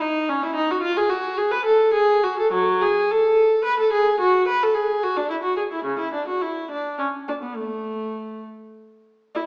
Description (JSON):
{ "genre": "classical, baroque-style suite movement for unaccompanied viola", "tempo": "65-74 BPM (dotted quarters)", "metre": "6/8", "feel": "rubato", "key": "A major", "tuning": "A4 = 439 Hz", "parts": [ { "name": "warm viola", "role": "solo", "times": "0.0-9.4 s", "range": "C#3 to B4", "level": "-22 LUFS", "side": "equal", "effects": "none" } ], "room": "wet recital hall reverb, RT60 1.4 s", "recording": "recorded in a church or concert hall, small speaker sound", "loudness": "-21 LUFS", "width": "mono", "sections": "0.0-9.4 A section", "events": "none", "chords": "none", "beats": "0.00 | 0.82 1.66 | 2.53 3.37 | 4.20 5.02 | 5.85 6.69 | 7.57 8.46 | 9.36" }